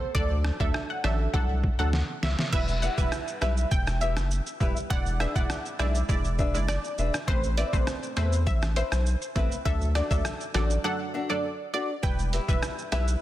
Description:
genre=dancehall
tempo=101 BPM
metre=4/4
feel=straight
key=E minor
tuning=A4 = 440 Hz
part: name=punchy chord stab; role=accompaniment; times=0.0-13.2 s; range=C3 to D5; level=-34 LUFS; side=right 2 dB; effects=chorus
part: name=analog pluck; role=melody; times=0.1-13.0 s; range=C5 to G5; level=-33 LUFS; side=equal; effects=chorus, ping-pong delay
part: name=saturated sub bass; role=bass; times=0.1-13.2 s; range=E1 to E2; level=-27 LUFS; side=equal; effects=none
part: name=trip hop sampler-style drum kit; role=drums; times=0.1-13.2 s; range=crash cymbal, hi-hat, kick drum, rim click, shaker, snare drum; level=-29 LUFS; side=equal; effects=soft clipping on snare
part: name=flamenco guitar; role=arpeggios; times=2.8-13.1 s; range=C4 to E5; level=-35 LUFS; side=left 4 dB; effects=none
room=digital ambience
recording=dense, heavily limited modern master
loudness=-24 LUFS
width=side -14 dB against mid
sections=0.0-2.5 A section; 2.5-12.0 B section; 12.0-13.2 C section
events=drum fill 1.9-2.5; break 10.8-12.0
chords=0.1 D; 2.5 Em; 4.9 E7; 7.3 Amadd9; 9.7 D; 12.0 Em

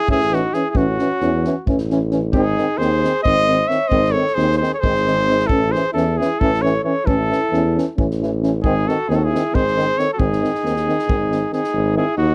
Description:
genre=balkan folk, Balkan brass band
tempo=267 BPM (eighths)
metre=7/8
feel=straight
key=G# phrygian dominant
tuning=A4 = 440 Hz
part: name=clear trumpet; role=melody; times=0.0-12.3 s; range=F#4 to E5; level=-22 LUFS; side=equal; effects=none
part: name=clear alto saxophone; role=second line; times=0.0-12.3 s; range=C#4 to C#5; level=-28 LUFS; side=equal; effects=none
part: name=clear trombone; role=accompaniment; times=0.1-12.0 s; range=D#3 to E3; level=-28 LUFS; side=equal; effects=none
part: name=warm euphonium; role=accompaniment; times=0.1-12.0 s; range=B#3 to C#4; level=-26 LUFS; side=equal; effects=none
part: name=warm tuba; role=bass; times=0.1-12.3 s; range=G#1 to E2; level=-23 LUFS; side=equal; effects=none
part: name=unplugged drum kit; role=percussion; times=0.1-11.7 s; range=kick drum, snare drum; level=-27 LUFS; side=equal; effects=none
room=little or no reverb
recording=none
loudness=-18 LUFS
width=mono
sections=0.0-11.7 A section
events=none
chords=0.0 A; 2.3 G#; 5.5 A; 8.6 G#

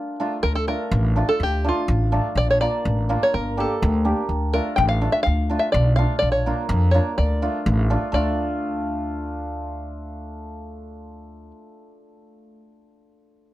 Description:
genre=klezmer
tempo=125 BPM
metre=2/4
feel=straight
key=D harmonic minor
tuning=A4 = 440 Hz
part: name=open-back banjo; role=melody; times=0.0-11.5 s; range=F4 to G5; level=-23 LUFS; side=equal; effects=none
part: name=hammered dulcimer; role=accompaniment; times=0.2-12.6 s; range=A3 to G4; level=-27 LUFS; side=equal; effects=none
part: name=upright bass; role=bass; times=0.4-11.5 s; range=G1 to F2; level=-22 LUFS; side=equal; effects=none
room=little or no reverb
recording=close, detailed microphones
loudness=-19 LUFS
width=side -15 dB against mid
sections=0.4-8.1 A section; 8.1-10.0 B section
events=break 0.0-0.4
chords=0.4 Dm; 2.4 Bb; 3.3 Gm; 4.3 Dm; 6.2 Bb; 7.2 Dm

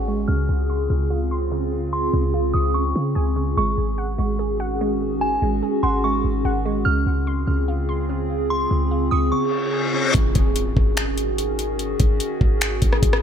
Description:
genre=hip hop, atmospheric cloud-rap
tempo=146 BPM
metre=4/4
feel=half-time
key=Db major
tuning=A4 = 441 Hz
part: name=delicate synth tine bell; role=melody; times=0.0-10.1 s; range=Ab5 to F6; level=-27 LUFS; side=equal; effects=chorus, low-pass filter, digital delay
part: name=warbly tape-like pad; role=sustained chords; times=0.0-13.2 s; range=Db3 to Ab4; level=-24 LUFS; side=equal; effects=chorus, built-in reverb, phaser, sidechain pumping, low-pass filter
part: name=glassy wavetable pluck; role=arpeggios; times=0.0-10.1 s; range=Db3 to Db6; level=-29 LUFS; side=right 4 dB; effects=chorus, low-pass filter, digital delay
part: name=clean 808-style bass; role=bass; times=0.0-13.2 s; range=Ab1 to Db3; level=-23 LUFS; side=equal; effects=none
part: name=downlifter, reverse cymbal and impact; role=sound effects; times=0.0-0.3, 9.5-11.8 s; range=none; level=-27 LUFS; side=left 4 dB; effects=none
part: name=smooth R&B drum kit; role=drums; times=10.1-13.2 s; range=finger snaps, hi-hat, kick drum, rim click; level=-20 LUFS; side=equal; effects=none
room=light reverb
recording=none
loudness=-19 LUFS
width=side -8 dB against mid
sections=0.0-10.1 A section; 10.1-13.2 B section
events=filter sweep 0.0-10.1; reverse cymbal 9.5-10.1; impact 10.1-11.8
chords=0.3 Dbmaj7; 3.6 Ab7sus4; 6.9 Dbmaj7; 10.1 Ab7sus4

